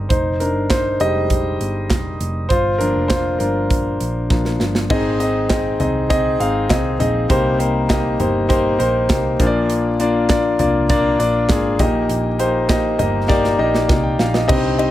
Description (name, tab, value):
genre	piano-driven pop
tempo	100 BPM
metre	4/4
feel	straight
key	unclear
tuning	A4 = 440 Hz
part	clear concert grand piano	accompaniment	0.0-14.9 s	G2 to G5	-17 LUFS	left 1 dB	none
part	hollow-body short-scale picked electric bass	bass	0.0-14.9 s	F1 to C2	-23 LUFS	right 1 dB	none
part	modern studio drum kit	drums	0.1-14.9 s	crash cymbal, handclaps, hi-hat, kick drum, ride cymbal, snare drum, toms	-20 LUFS	right 1 dB	none
room	light reverb, small room ambience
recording	none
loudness	-15 LUFS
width	side -13 dB against mid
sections	0.0-4.9 A section; 4.9-14.5 B section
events	grand piano solo 0.0-4.9; drum fill 4.3-4.9, 13.3-14.5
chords	0.1 Fm7; 2.5 Gm7; 4.9 Ab; 7.3 Cm7; 9.4 Bb; 11.8 Eb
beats	| 0.10 0.70 1.30 1.90 | 2.50 3.10 3.70 4.30 | 4.90 5.50 6.10 6.70 | 7.30 7.90 8.50 9.10 | 9.70 10.30 10.90 11.50 | 12.10 12.70 13.29 13.89 | 14.49